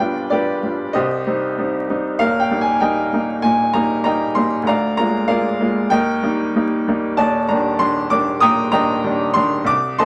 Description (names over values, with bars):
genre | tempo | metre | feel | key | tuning
classical, romantic character piece for solo piano | 96 BPM | 4/4 | rubato | unclear | A4 = 439 Hz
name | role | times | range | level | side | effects
bright upright piano | solo | 0.0-10.1 s | Eb1 to Eb6 | -18 LUFS | equal | none
room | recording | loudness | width
moderate studio reverb, RT60 0.7 s | vinyl crackle | -18 LUFS | mono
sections
0.0-10.1 A section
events
none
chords
0.0 G7/B; 1.0 Cm; 2.2 Eb; 4.7 Bb7/D; 5.9 Eb; 7.2 Ebmaj7